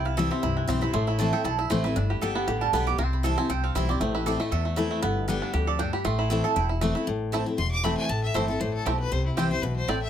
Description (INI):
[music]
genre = bluegrass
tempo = 235 BPM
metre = 4/4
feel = swing 54% on 8ths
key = A minor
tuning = A4 = 438 Hz
[part]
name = bluegrass banjo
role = melody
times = 0.0-9.9 s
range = E3 to A4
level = -30 LUFS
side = right 2 dB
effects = none
[part]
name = picked steel-string acoustic guitar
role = accompaniment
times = 0.0-10.1 s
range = E2 to G4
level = -28 LUFS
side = left 3 dB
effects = none
[part]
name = mandolin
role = stabs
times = 0.0-10.0 s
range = C4 to D6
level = -32 LUFS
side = right 9 dB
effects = none
[part]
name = upright bass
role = bass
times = 0.0-10.1 s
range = E1 to E2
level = -28 LUFS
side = equal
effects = none
[part]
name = clear fiddle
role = melody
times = 7.6-10.1 s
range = E4 to D6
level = -30 LUFS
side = left 4 dB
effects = none
[sound]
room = moderate small room reverb, RT60 0.5 s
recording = none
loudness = -23 LUFS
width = side -9 dB against mid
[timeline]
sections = 0.0-7.1 A section; 7.1-10.1 B section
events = mandolin solo 0.0-7.1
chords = 0.0 Am; 2.0 G; 3.0 C; 4.0 Am; 5.0 G; 6.1 Am; 9.1 C